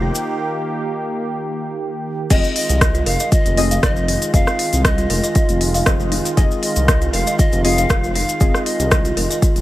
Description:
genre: afro house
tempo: 118 BPM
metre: 4/4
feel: swing 53% on 16ths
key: F minor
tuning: A4 = 440 Hz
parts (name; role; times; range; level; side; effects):
- warm analog pad; sustained chords; 0.0-9.6 s; Eb3 to G4; -25 LUFS; right 2 dB; chorus, sidechain pumping
- buzzing kalimba; arpeggios; 0.0-9.6 s; Eb4 to F5; -27 LUFS; right 1 dB; sidechain pumping, dub echo
- dark detuned saw bass; bass; 0.0-9.6 s; F1 to C2; -20 LUFS; equal; sidechain pumping
- tube shaker; percussion; 0.1-9.6 s; none; -28 LUFS; left 3 dB; none
- afro-pop drum kit; drums; 0.2-9.6 s; crash cymbal, hi-hat, rim click; -22 LUFS; equal; none
- polished pan flute; melody; 2.3-9.4 s; Eb5 to F5; -24 LUFS; equal; dub echo
- deep mellow chord stab; stabs; 2.3-9.6 s; C4 to Eb5; -26 LUFS; left 3 dB; chorus, sidechain pumping, dub echo
- electronic kick drum; drums; 2.3-9.5 s; none; -16 LUFS; equal; overdrive
room: little or no reverb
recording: none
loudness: -15 LUFS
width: side -16 dB against mid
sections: 0.0-2.3 A section; 2.3-9.6 B section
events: break 0.3-2.3; drop 2.3-9.6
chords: 0.0 Eb/F; 2.3 Fm7

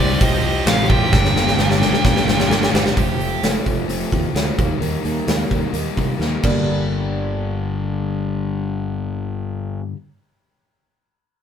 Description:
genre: quiet-loud alternative rock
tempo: 129 BPM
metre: 4/4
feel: straight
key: G minor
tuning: A4 = 440 Hz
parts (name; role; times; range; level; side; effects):
- nasal lead guitar with a parked wah; melody; 0.0-2.7 s; D5 to G5; -22 LUFS; equal; overdrive
- crunchy overdriven guitar; riff; 0.0-10.0 s; F2 to G4; -24 LUFS; left 6 dB; none
- heavy high-gain guitar; riff; 0.0-3.5 s; G2 to G4; -24 LUFS; right 8 dB; distortion
- thick fuzz guitar; riff; 0.0-3.0 s; G2 to C4; -25 LUFS; left 1 dB; none
- fuzz fingered electric bass; bass; 0.0-9.8 s; F1 to C3; -24 LUFS; right 1 dB; overdrive
- huge arena drum kit; drums; 0.2-6.5 s; crash cymbal, hi-hat, kick drum, snare drum; -19 LUFS; equal; none
- fingerpicked acoustic archtop guitar; arpeggios; 3.0-10.0 s; G2 to G4; -28 LUFS; right 5 dB; none
room: light reverb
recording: band playing live in one room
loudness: -17 LUFS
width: side -8 dB against mid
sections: 0.0-3.0 A section; 3.0-6.7 B section; 6.7-10.4 C section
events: drum fill 1.1-3.0, 6.2-6.7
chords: 0.0 Csus4; 1.1 Gm; 3.0 Fadd9; 4.6 Eb; 6.4 Gm

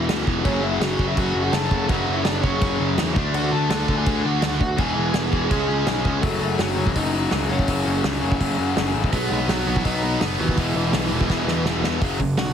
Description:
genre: punk rock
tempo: 166 BPM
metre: 4/4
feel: straight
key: F# minor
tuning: A4 = 440 Hz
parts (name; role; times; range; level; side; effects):
- smooth overdriven lead guitar; melody; 0.0-12.5 s; E3 to A5; -26 LUFS; right 1 dB; none
- biting overdriven guitar; riff; 0.0-6.2, 9.1-12.5 s; E2 to D4; -28 LUFS; right 12 dB; none
- overdriven electric guitar; riff; 0.0-12.5 s; E2 to D4; -26 LUFS; left 10 dB; none
- tight distorted guitar; riff; 0.0-12.0 s; E2 to D4; -30 LUFS; right 1 dB; distortion
- fuzz picked electric bass; bass; 0.0-12.5 s; E1 to F#2; -26 LUFS; equal; overdrive
- loose indie drum kit; drums; 0.1-12.5 s; crash cymbal, hi-hat, kick drum, snare drum; -25 LUFS; equal; none
room: little or no reverb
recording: heavily compressed radio sound, multiband compression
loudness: -19 LUFS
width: side -8 dB against mid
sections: 0.0-6.2 A section; 6.2-12.0 B section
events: drum fill 11.3-12.0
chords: 0.4 F#m; 3.2 D; 4.8 E; 5.5 C#5; 6.2 F#m; 9.1 B; 10.6 E5; 12.0 F#5

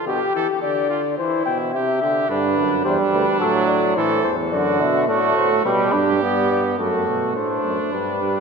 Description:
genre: classical, imitative canzona for brass ensemble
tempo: 107 BPM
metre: 4/4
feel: straight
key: unclear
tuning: A4 = 438 Hz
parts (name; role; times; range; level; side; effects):
- dark trumpet; melody; 0.0-8.4 s; G4 to G5; -23 LUFS; left 7 dB; none
- clear trumpet; second line; 0.0-8.4 s; D4 to A4; -24 LUFS; right 6 dB; none
- brilliant trombone; accompaniment; 0.1-8.4 s; B2 to D4; -22 LUFS; right 3 dB; none
- clear bass trombone; bass; 2.3-8.3 s; D2 to B2; -24 LUFS; right 2 dB; none
room: wet church reverb, RT60 2.6 s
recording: none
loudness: -17 LUFS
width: side -5 dB against mid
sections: 0.0-6.8 A section; 6.8-8.4 B section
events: none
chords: 0.1 G5; 1.2 C; 2.3 G; 3.4 F#dim/A; 4.5 D/F#; 5.7 G; 6.8 D/F#

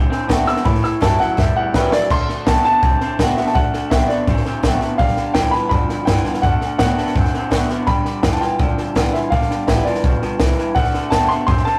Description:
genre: rockabilly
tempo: 166 BPM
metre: 4/4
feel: straight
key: D mixolydian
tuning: A4 = 440 Hz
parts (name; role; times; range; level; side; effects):
- picked swing-style acoustic guitar; accompaniment; 0.0-11.8 s; E2 to F#4; -27 LUFS; equal; none
- electric guitar through a small old amp; riff; 0.0-11.8 s; G2 to C4; -26 LUFS; equal; none
- upright bass; bass; 0.0-11.7 s; G1 to A2; -25 LUFS; equal; none
- compact cocktail drum kit; drums; 0.1-11.7 s; crash cymbal, hi-hat, kick drum, snare drum; -22 LUFS; equal; none
- warm upright piano; melody; 0.5-11.8 s; B4 to E6; -22 LUFS; equal; none
room: wet small room reverb, RT60 0.6 s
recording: rough rehearsal-room recording, warm saturation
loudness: -17 LUFS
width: mono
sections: 0.0-2.1 A section; 2.1-11.8 B section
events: upright piano solo 0.0-2.1; drum fill 1.4-2.1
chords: 0.0 D7; 0.7 A7; 2.1 D7; 5.0 G7; 6.4 D7; 7.9 G7; 10.8 D7

